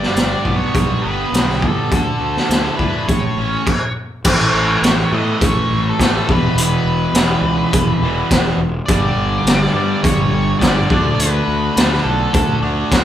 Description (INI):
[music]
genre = classic rock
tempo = 104 BPM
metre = 4/4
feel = straight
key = unclear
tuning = A4 = 440 Hz
[part]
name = octave-fuzz lead guitar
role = melody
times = 0.0-12.6 s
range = A4 to D#5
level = -22 LUFS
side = equal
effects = distortion
[part]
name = cranked stack guitar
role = riff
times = 0.0-13.0 s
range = E2 to E4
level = -19 LUFS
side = right 1 dB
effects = overdrive
[part]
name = fuzz fingered electric bass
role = bass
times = 0.0-13.0 s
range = E1 to A2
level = -22 LUFS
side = equal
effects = overdrive
[part]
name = raw garage drum kit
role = drums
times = 0.0-13.0 s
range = crash cymbal, hi-hat, kick drum, snare drum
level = -17 LUFS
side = equal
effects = none
[sound]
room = moderate large studio reverb, RT60 0.8 s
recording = band playing live in one room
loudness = -14 LUFS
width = side -11 dB against mid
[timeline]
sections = 0.0-4.3 A section; 4.3-13.0 B section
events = stop 3.7-4.3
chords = 0.0 G; 1.9 Dsus2; 3.1 A; 6.3 E5; 8.9 G5; 10.9 D5